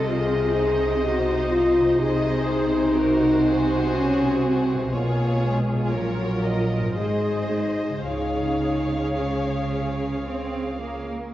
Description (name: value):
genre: classical, slow romantic movement for symphony orchestra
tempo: 54-63 BPM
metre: 3/4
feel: rubato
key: Db major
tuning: A4 = 441 Hz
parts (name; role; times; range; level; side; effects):
- warm chamber violin section; melody; 0.0-11.1 s; C5 to F5; -31 LUFS; left 2 dB; none
- rich studio violin section; second line; 0.0-11.1 s; Ab4 to Db5; -33 LUFS; left 2 dB; none
- warm studio viola section; accompaniment; 0.0-11.1 s; Eb4 to Ab4; -30 LUFS; right 2 dB; none
- dark French horn section; sustained chords; 0.0-10.3 s; Gb3 to Ab4; -23 LUFS; left 1 dB; none
- concert harp; arpeggios; 0.0-11.3 s; Ab2 to Gb4; -34 LUFS; left 4 dB; none
- rich studio double bass section; bass; 0.0-11.1 s; Ab1 to Db2; -29 LUFS; right 2 dB; none
- warm studio cello section; bass; 0.0-11.3 s; Ab2 to C4; -30 LUFS; right 3 dB; none
room: moderate concert hall reverb, RT60 1.8 s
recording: worn, warbling old tape, cassette tape, warbly pitch drift, nothing above 7.8 kHz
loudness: -20 LUFS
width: side -13 dB against mid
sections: 0.0-11.3 A section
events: none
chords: 0.0 Cdim; 2.0 Ab7/C; 4.9 Db7/Cb; 5.9 Gb/Bb; 7.0 Ab7; 8.1 Db